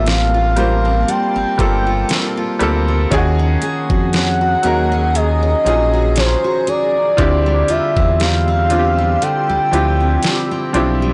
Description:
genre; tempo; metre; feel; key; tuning
contemporary R&B; 59 BPM; 4/4; swing 54% on 16ths; unclear; A4 = 440 Hz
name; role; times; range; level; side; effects
gliding portamento lead; melody; 0.0-10.7 s; C5 to G5; -20 LUFS; equal; chorus, delay
clear grand piano; accompaniment; 0.0-11.1 s; F3 to C5; -23 LUFS; equal; none
granular cloud pad; sustained chords; 0.0-11.1 s; Bb3 to E6; -30 LUFS; equal; built-in reverb, sidechain pumping
picked steel-string acoustic guitar; arpeggios; 0.0-11.1 s; D3 to Bb4; -25 LUFS; equal; none
smooth gliding synth bass; bass; 0.0-11.1 s; G1 to F2; -20 LUFS; equal; none
downlifter; sound effects; 0.4-3.1 s; none; barely audible; none; none
smooth R&B drum kit; drums; 0.1-11.0 s; hi-hat, kick drum, snare drum; -22 LUFS; equal; none
room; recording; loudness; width
little or no reverb; blown-out, overdriven recording, overdrive, nothing above 10.9 kHz; -16 LUFS; mono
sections
0.0-11.1 A section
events
kick muted 9.2-11.1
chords
0.0 Gm11; 3.1 Ebm11; 7.2 Dm11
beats
0.07 1.08 2.10 | 3.12 4.13 5.15 6.17 | 7.18 8.20 9.22 10.23

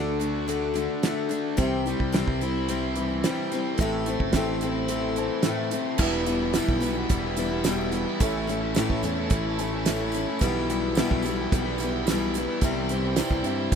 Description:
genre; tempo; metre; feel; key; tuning
folk rock and heartland rock; 109 BPM; 4/4; straight; E minor; A4 = 440 Hz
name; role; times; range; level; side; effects
dark upright piano; accompaniment; 0.0-13.8 s; G4 to A5; -39 LUFS; right 8 dB; none
picked steel-string acoustic guitar; accompaniment; 0.0-13.8 s; E2 to F#4; -28 LUFS; left 6 dB; none
crunchy overdriven guitar; riff; 0.0-13.8 s; E2 to F#4; -29 LUFS; right 2 dB; none
fingered electric bass; bass; 0.0-13.8 s; E1 to G2; -32 LUFS; right 1 dB; none
damped 70s drum kit; drums; 0.2-13.8 s; crash cymbal, hi-hat, kick drum, snare drum; -26 LUFS; right 2 dB; none
tonewheel organ; sustained chords; 1.6-13.8 s; E4 to C#5; -34 LUFS; right 2 dB; slow rotary speaker
tambourine; percussion; 6.0-13.8 s; none; -42 LUFS; right 13 dB; none
room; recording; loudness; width
small room ambience; rough home demo mix; -23 LUFS; side -7 dB against mid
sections
0.0-6.0 A section; 6.0-13.8 B section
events
upright piano fill 4.9-6.0, 9.3-10.4, 13.2-13.8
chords
0.0 D; 1.6 C; 3.8 Am; 6.0 Em; 8.2 A; 10.4 Em/B; 12.6 C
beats
0.49 1.04 | 1.59 2.14 2.70 3.25 | 3.80 4.35 4.91 5.46 | 6.01 6.56 7.11 7.67 | 8.22 8.77 9.32 9.87 | 10.42 10.97 11.52 12.07 | 12.62 13.17 13.72

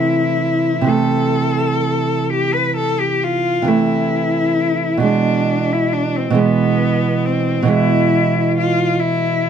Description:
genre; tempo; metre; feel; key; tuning
romantic duo for cello and classical guitar; 37-46 BPM (dotted quarters); 12/8; rubato; A minor; A4 = 441 Hz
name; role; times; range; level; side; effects
rich cello; melody; 0.0-9.5 s; B3 to B4; -18 LUFS; left 5 dB; none
nylon-string guitar; accompaniment; 0.0-9.5 s; B2 to A3; -16 LUFS; right 4 dB; none
room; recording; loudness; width
light reverb; none; -14 LUFS; side -8 dB against mid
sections
0.0-9.5 A section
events
none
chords
0.0 Am/C; 5.0 E/B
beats
0.89 2.30 3.69 | 5.04 6.37 7.69 8.99

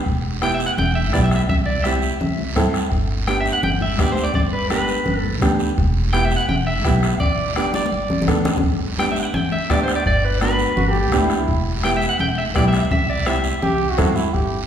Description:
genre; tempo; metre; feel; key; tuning
latin, cumbia; 168 BPM; 4/4; straight; G major; A4 = 439 Hz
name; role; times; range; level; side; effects
upright bass; bass; 0.1-14.7 s; E1 to G2; -22 LUFS; equal; none
bombo; percussion; 0.1-14.5 s; none; -24 LUFS; left 2 dB; none
guiro; percussion; 0.1-14.7 s; none; -33 LUFS; right 6 dB; none
electric guitar at the edge of break-up; melody; 0.4-14.0 s; B4 to G5; -23 LUFS; right 1 dB; spring reverb
clear upright piano; accompaniment; 0.4-14.2 s; B3 to A4; -25 LUFS; right 3 dB; none
congas; percussion; 0.4-14.2 s; none; -25 LUFS; left 2 dB; none
brilliant trombone; second line; 10.8-14.6 s; E4 to G4; -24 LUFS; right 2 dB; none
room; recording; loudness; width
wet recital hall reverb, RT60 1.6 s; recorded in a church or concert hall; -17 LUFS; side -9 dB against mid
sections
0.0-8.6 A section; 8.6-14.7 A section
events
drum fill 7.7-8.6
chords
0.1 Em; 1.5 C; 2.9 G; 5.8 Em; 7.2 G; 11.5 Em; 12.9 C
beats
| 0.06 0.42 0.78 1.13 | 1.49 1.85 2.21 2.56 | 2.92 3.28 3.63 3.99 | 4.35 4.71 5.06 5.42 | 5.78 6.13 6.49 6.85 | 7.20 7.56 7.92 8.27 | 8.63 8.99 9.35 9.70 | 10.06 10.42 10.77 11.13 | 11.49 11.84 12.20 12.56 | 12.91 13.27 13.63 13.98 | 14.34

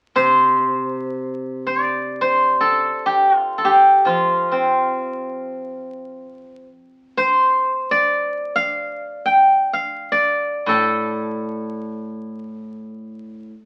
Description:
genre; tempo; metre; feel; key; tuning
chinese traditional, Chinese solo plucked strings; free time; none; none; unclear; A4 = 439 Hz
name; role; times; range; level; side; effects
steel-string zither; solo; 0.2-13.5 s; A2 to G5; -19 LUFS; equal; none
room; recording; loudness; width
moderate studio reverb, RT60 0.5 s; very old 78 rpm record, vinyl crackle; -18 LUFS; mono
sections
0.0-13.7 A section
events
none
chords
none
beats
free time

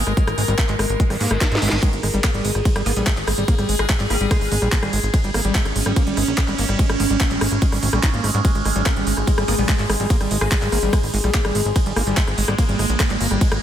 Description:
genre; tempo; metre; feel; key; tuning
psychedelic trance; 145 BPM; 4/4; straight; unclear; A4 = 440 Hz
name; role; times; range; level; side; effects
evolving wavetable pad; sustained chords; 0.0-13.6 s; G#3 to A#4; -25 LUFS; equal; phaser, built-in reverb, sidechain pumping
screaming distorted acid line; riff; 0.0-13.5 s; G3 to D#4; -27 LUFS; equal; distortion, chorus, auto-pan, sidechain pumping, ping-pong delay
plucky analog bass; bass; 0.0-13.6 s; G#1 to G#2; -22 LUFS; equal; none
garage drum kit; drums; 0.1-13.6 s; handclaps, hi-hat, ride cymbal, rim click, snare drum; -24 LUFS; equal; none
electronic kick drum; drums; 0.2-13.5 s; none; -20 LUFS; equal; none
reverse cymbal and zap; sound effects; 1.1-1.8 s; none; -30 LUFS; equal; none
metallic wobble bass; second line; 2.9-4.9, 9.5-10.6 s; G3 to B3; -33 LUFS; right 1 dB; ensemble chorus, sidechain pumping, high-pass filter, ping-pong delay
room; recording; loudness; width
digital ambience; none; -17 LUFS; side -10 dB against mid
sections
0.0-13.6 A section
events
reverse cymbal 1.1-1.8; drum fill 1.4-1.8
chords
0.0 G#5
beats
| 0.17 0.58 1.00 1.41 | 1.83 2.24 2.65 3.07 | 3.48 3.90 4.31 4.72 | 5.14 5.55 5.96 6.38 | 6.79 7.21 7.62 8.03 | 8.45 8.86 9.27 9.69 | 10.10 10.52 10.93 11.34 | 11.76 12.17 12.59 13.00 | 13.41

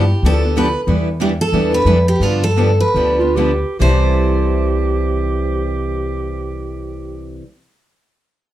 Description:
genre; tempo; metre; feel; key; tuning
acoustic string swing (jazz manouche); 132-188 BPM; 4/4; swing 59% on 8ths; C major; A4 = 440 Hz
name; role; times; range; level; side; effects
picked steel-string acoustic guitar; melody; 0.0-7.4 s; F4 to C5; -19 LUFS; right 1 dB; slapback echo, plate reverb
picked steel-string acoustic guitar; accompaniment; 0.0-7.5 s; C3 to A4; -24 LUFS; left 4 dB; none
picked steel-string acoustic guitar; accompaniment; 0.0-7.5 s; C3 to B4; -23 LUFS; right 4 dB; none
upright bass; bass; 0.0-7.4 s; C2 to G2; -18 LUFS; left 1 dB; none
breathy clarinet; second line; 3.2-7.4 s; F4 to G4; -23 LUFS; right 4 dB; slapback echo
room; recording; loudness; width
moderate studio reverb, RT60 0.5 s; dark, warm production; -14 LUFS; side -13 dB against mid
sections
0.0-3.8 A section; 3.8-7.4 B section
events
slowing down 0.9-3.8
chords
0.0 G9; 0.9 Em7; 2.2 G9; 3.8 C6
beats
0.23 0.55 | 0.87 1.19 1.52 1.85 | 2.20 2.56 2.95 3.35 | 3.79 4.25 4.71 5.16 | 5.62 6.08 6.53 6.99

